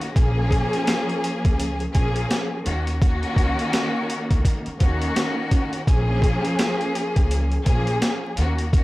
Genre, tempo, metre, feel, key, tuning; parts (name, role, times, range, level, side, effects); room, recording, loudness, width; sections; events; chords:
hip hop, boom-bap hip-hop; 84 BPM; 4/4; swing 59% on 16ths; Bb minor; A4 = 441 Hz
warm studio string section; accompaniment; 0.0-8.8 s; Eb3 to Ab4; -24 LUFS; left 1 dB; cassette tape
boom bap sampler-style drum kit; drums; 0.0-8.8 s; hi-hat, kick drum, snare drum; -22 LUFS; equal
upright bass; bass; 0.2-8.8 s; Bb1 to Eb2; -24 LUFS; equal; tube saturation
light reverb; dry, gritty hardware recording, vinyl crackle; -19 LUFS; side -18 dB against mid
0.0-8.8 A section
0.2 Bbm7; 2.7 Ebm7; 5.9 Bbm7